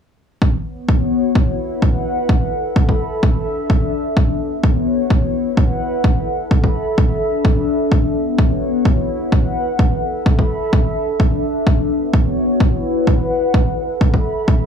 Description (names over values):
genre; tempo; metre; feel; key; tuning
piano house; 128 BPM; 4/4; swing 54% on 16ths; unclear; A4 = 440 Hz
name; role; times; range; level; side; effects
electronic kick drum; drums; 0.4-14.6 s; none; -15 LUFS; equal; none
warbly tape-like pad; texture; 0.8-14.7 s; B3 to B5; -19 LUFS; left 2 dB; chorus, built-in reverb, sidechain pumping
room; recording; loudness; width
little or no reverb; small room ambience; -15 LUFS; side -7 dB against mid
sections
0.4-14.7 A section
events
none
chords
0.4 B5; 1.1 E5; 2.1 A5; 3.2 Dsus2; 4.2 Bm7; 4.9 E5; 5.8 A5; 7.0 Dsus2; 7.9 Bm7; 8.6 E5; 9.6 A5; 10.7 Dsus2; 11.7 Bm7; 12.4 E5; 13.3 A5